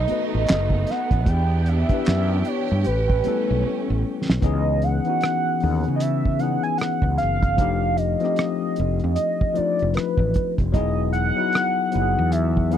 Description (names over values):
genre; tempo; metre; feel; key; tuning
R&B, neo-soul; 76 BPM; 4/4; swing 60% on 16ths; unclear; A4 = 439 Hz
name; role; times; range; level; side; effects
warm velvety synth lead; melody; 0.0-12.8 s; B4 to G#5; -25 LUFS; right 2 dB; chorus, tape echo
warm symphonic string section; sustained chords; 0.0-4.4 s; E3 to G4; -29 LUFS; right 5 dB; none
fretless electric bass; bass; 0.0-12.8 s; E1 to C#3; -22 LUFS; right 1 dB; none
tine electric piano; accompaniment; 0.1-12.8 s; E3 to B4; -26 LUFS; left 12 dB; none
cloth-damped thuddy drum kit; drums; 0.1-12.8 s; handclaps, hi-hat, kick drum, rim click, snare drum; -22 LUFS; right 1 dB; none
room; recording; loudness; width
little or no reverb; dry, close 1970s-style studio recording; -19 LUFS; side -10 dB against mid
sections
0.0-4.4 A section; 4.4-12.8 B section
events
drum fill 3.6-4.4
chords
0.0 B7; 1.3 Em7; 2.8 A9; 4.4 C#m9; 7.6 F13; 10.7 Emaj9